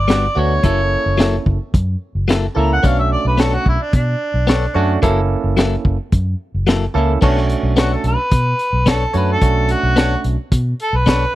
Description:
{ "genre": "straight-eighth soul blues", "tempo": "109 BPM", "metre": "4/4", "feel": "straight", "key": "B minor", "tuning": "A4 = 441 Hz", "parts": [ { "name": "mellow harmonica", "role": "melody", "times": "0.0-11.3 s", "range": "D4 to A#5", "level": "-19 LUFS", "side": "equal", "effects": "overdrive, slapback echo" }, { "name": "vintage muted fingered electric bass", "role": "bass", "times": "0.0-11.2 s", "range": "F#1 to B2", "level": "-18 LUFS", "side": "equal", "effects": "none" }, { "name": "direct-recorded clean electric guitar", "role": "stabs", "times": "0.1-11.2 s", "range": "F#3 to C#5", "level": "-20 LUFS", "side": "left 5 dB", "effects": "none" }, { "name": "crunchy breakbeat drum kit", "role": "drums", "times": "0.1-11.2 s", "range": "crash cymbal, hi-hat, kick drum, snare drum", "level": "-17 LUFS", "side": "equal", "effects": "none" }, { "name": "barky tine electric piano", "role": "accompaniment", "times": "0.4-10.4 s", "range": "A3 to A4", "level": "-21 LUFS", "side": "right 6 dB", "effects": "none" } ], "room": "small room ambience", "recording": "dry, close 1970s-style studio recording", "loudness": "-14 LUFS", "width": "side -15 dB against mid", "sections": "0.0-7.2 A section; 7.2-11.3 B section", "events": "harmonica solo 7.2-11.3", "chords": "0.0 Gmaj7; 0.6 F#7#9; 2.8 Bm9; 5.0 F#7#9; 7.2 Bm9", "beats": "0.09 | 0.64 1.19 1.74 2.29 | 2.83 3.38 3.93 4.48 | 5.03 5.58 6.13 6.68 | 7.22 7.77 8.32 8.87 | 9.42 9.97 10.52 11.07" }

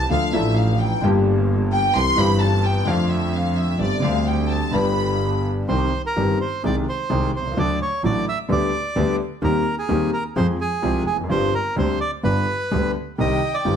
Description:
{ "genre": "tango", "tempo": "128 BPM", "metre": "4/4", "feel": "rubato", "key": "C minor from 5.7 s", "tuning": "A4 = 440 Hz", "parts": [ { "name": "warm studio violin section", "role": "second line", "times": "0.0-5.5, 13.2-13.8 s", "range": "D5 to C6", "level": "-24 LUFS", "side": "left 1 dB", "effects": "none" }, { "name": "warm concert grand piano", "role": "accompaniment", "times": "0.0-13.8 s", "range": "G1 to A4", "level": "-22 LUFS", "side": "left 2 dB", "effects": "none" }, { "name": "clear double bass", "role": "bass", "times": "0.0-13.8 s", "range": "F1 to F2", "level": "-24 LUFS", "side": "right 2 dB", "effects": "none" }, { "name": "bandoneon", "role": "melody", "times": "5.7-13.8 s", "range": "Ab4 to E5", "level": "-25 LUFS", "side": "right 3 dB", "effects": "plate reverb" } ], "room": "moderate studio reverb, RT60 1.0 s", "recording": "none", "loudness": "-18 LUFS", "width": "side -8 dB against mid", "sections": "0.0-5.7 A section; 5.7-13.8 B section", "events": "violin section solo 0.0-5.7", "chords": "0.1 Dm; 1.0 Gm; 2.0 C; 2.9 F6; 3.8 Gsus4; 4.7 G; 5.7 Cm; 6.6 Ab/C; 7.6 D; 8.5 G/D; 9.4 Cm/Eb; 10.4 Fm; 11.3 Gsus4; 12.2 G; 13.2 Cm", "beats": "| 0.10 0.57 1.03 1.49 | 1.95 2.41 2.87 3.33 | 3.80 4.27 4.74 5.21 | 5.70 6.17 6.64 7.10 | 7.57 8.03 8.49 8.96 | 9.42 9.89 10.36 10.82 | 11.29 11.76 12.23 12.71 | 13.18 13.65" }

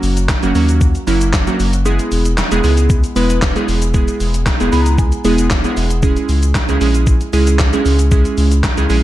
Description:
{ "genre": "dance-pop", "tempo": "115 BPM", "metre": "4/4", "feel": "straight", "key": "unclear", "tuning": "A4 = 441 Hz", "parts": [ { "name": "glassy digital keys", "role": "accompaniment", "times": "0.0-9.0 s", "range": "F#3 to B5", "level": "-17 LUFS", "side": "right 2 dB", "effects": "chorus, sidechain pumping" }, { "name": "warm sub bass", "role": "bass", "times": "0.0-9.0 s", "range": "E1 to D#2", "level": "-15 LUFS", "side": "equal", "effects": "sidechain pumping" }, { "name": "gated 80s digital drum machine", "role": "drums", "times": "0.0-9.0 s", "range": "handclaps, hi-hat, kick drum, shaker, snare drum", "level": "-17 LUFS", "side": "equal", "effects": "gated reverb, gated reverb snare" } ], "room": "digital ambience", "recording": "dark, warm production", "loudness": "-12 LUFS", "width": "side -14 dB against mid", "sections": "0.0-9.0 A section", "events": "kick muted 1.9-2.9; synth keys fill 4.5-6.0", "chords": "0.0 F#; 1.9 E; 6.0 C#m", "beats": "0.29 0.81 1.33 | 1.85 2.38 2.90 3.42 | 3.94 4.46 4.99 5.51 | 6.03 6.55 7.07 7.59 | 8.12 8.64" }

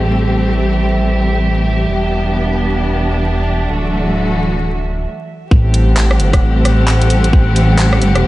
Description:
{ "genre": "future garage", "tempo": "132 BPM", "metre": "4/4", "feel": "swing 61% on 16ths", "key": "A dorian", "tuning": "A4 = 437 Hz", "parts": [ { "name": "warm studio string section", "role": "sustained chords", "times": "0.0-8.3 s", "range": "E3 to G4", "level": "-16 LUFS", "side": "equal", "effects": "sidechain pumping" }, { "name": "dark detuned saw bass", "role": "bass", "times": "0.0-8.2 s", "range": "D1 to A1", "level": "-14 LUFS", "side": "equal", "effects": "sidechain pumping" }, { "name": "drifting glass-harmonics texture", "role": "texture", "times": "0.0-8.3 s", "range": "E5 to F#5", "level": "-26 LUFS", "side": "right 1 dB", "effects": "chorus, built-in reverb" }, { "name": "electronic kick drum", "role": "drums", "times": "5.5-7.4 s", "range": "none", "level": "-10 LUFS", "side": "equal", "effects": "overdrive, studio reverb" }, { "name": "garage drum kit", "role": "drums", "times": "5.7-8.2 s", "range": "handclaps, hi-hat, rim click", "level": "-19 LUFS", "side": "equal", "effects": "overdrive, low-pass filter on hats, studio reverb, low-pass filter on snare" } ], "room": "light reverb, digital ambience", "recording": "vinyl crackle, nothing above 11.0 kHz", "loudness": "-12 LUFS", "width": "side -17 dB against mid", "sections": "0.0-5.5 A section; 5.5-8.3 B section", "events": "stop 5.1-5.5", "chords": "0.0 Am7; 1.9 Em7; 3.7 Dadd9; 5.5 Am7", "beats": "| 0.06 0.52 0.97 1.42 | 1.88 2.33 2.79 3.24 | 3.70 4.15 4.61 5.06 | 5.51 5.97 6.42 6.88 | 7.33 7.79 8.24" }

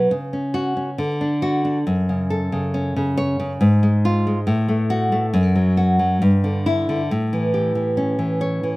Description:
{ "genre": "romantic piece for solo classical guitar", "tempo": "69 BPM", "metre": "2/4", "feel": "rubato", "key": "unclear", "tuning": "A4 = 440 Hz", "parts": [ { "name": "nylon-string guitar", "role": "solo", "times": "0.0-8.8 s", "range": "F#2 to C#5", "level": "-18 LUFS", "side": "equal", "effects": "none" } ], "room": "little or no reverb", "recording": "recorded outdoors, with no room sound", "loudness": "-18 LUFS", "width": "side -20 dB against mid", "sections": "0.0-8.8 A section", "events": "none", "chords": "0.1 F#5/C#; 1.0 D; 1.9 F#m; 3.6 Fm/Ab; 4.5 F#m/A; 5.3 N.C.; 6.2 Em7/G; 7.1 A7", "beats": "| 0.09 0.98 | 1.86 2.73 | 3.60 4.46 | 5.33 6.20 | 7.09 7.96" }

